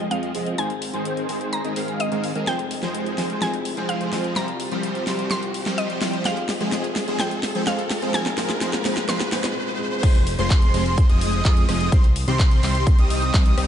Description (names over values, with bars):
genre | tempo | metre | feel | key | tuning
EDM, festival progressive house | 127 BPM | 4/4 | straight | F minor | A4 = 440 Hz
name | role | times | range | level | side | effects
mallet-like synth pluck | melody | 0.0-9.5 s | Eb5 to C6 | -29 LUFS | equal | chorus, ping-pong delay
felt-muted upright piano | accompaniment | 0.0-10.1 s | G3 to Ab4 | -32 LUFS | left 2 dB | sidechain pumping, ping-pong delay
supersaw chords | riff | 0.0-13.7 s | Eb3 to F5 | -26 LUFS | right 1 dB | ensemble chorus, sidechain pumping, low-pass filter, ping-pong delay
fat analog bass | bass | 0.0-13.7 s | F1 to Ab2 | -29 LUFS | equal | sidechain pumping, high-pass filter
riser | sound effects | 0.9-10.0 s | none | -34 LUFS | right 1 dB | none
pop drum kit | drums | 0.1-13.7 s | crash cymbal, handclaps, hi-hat, rim click, snare drum | -28 LUFS | equal | none
wide unison lead | arpeggios | 10.0-13.7 s | C6 to Eb6 | -28 LUFS | equal | lush chorus, vintage 12-bit sampler grit, sidechain pumping, ping-pong delay
electronic kick drum | drums | 10.0-13.4 s | none | -16 LUFS | equal | none
room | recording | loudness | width
light reverb | dark, warm production, nothing above 10.6 kHz | -19 LUFS | side -10 dB against mid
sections
0.0-10.0 A section; 10.0-13.7 B section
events
build-up 0.0-10.0; filter sweep on supersaw synth 0.0-10.0; riser 0.9-10.0; drum fill 2.5-9.6; break 9.6-10.0; drop 10.0-13.7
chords
0.0 Fm; 0.6 Ab; 2.5 Fm; 4.4 Cm; 6.3 Fm; 8.1 Ab; 10.0 Fm; 11.9 Cm